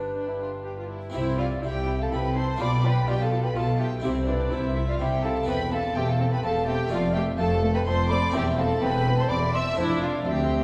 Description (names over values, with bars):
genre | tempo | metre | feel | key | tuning
classical, baroque-style concerto movement with solo episodes | 125 BPM | 3/4 | straight | C major | A4 = 440 Hz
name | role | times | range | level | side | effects
baroque flute | melody | 0.0-10.6 s | G4 to C6 | -33 LUFS | equal | none
dark studio violin section | melody | 0.0-10.6 s | G4 to E6 | -38 LUFS | equal | none
dark chamber violin section | second line | 0.0-10.6 s | C4 to E5 | -32 LUFS | equal | none
harpsichord | accompaniment | 0.0-10.6 s | D2 to A4 | -36 LUFS | equal | none
warm chamber viola section | accompaniment | 0.0-10.6 s | A3 to F4 | -36 LUFS | equal | none
dark chamber cello section | bass | 0.0-10.6 s | D2 to C3 | -33 LUFS | equal | none
warm studio double bass section | bass | 0.0-10.6 s | E1 to D2 | -31 LUFS | equal | none
room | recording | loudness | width
wet scoring stage reverb, RT60 1.9 s | heard from further back in the room | -25 LUFS | mono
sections
0.0-1.1 A section; 1.1-10.6 B section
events
none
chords
0.0 G; 1.1 C; 2.6 G7/B; 4.0 C; 5.5 C/E; 6.9 Dm/F; 8.3 C/E; 9.8 Dm/F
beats
0.15 0.65 | 1.14 1.63 2.11 | 2.60 3.08 3.56 | 4.04 4.52 5.00 | 5.48 5.96 6.44 | 6.91 7.39 7.87 | 8.35 8.82 9.30 | 9.78 10.26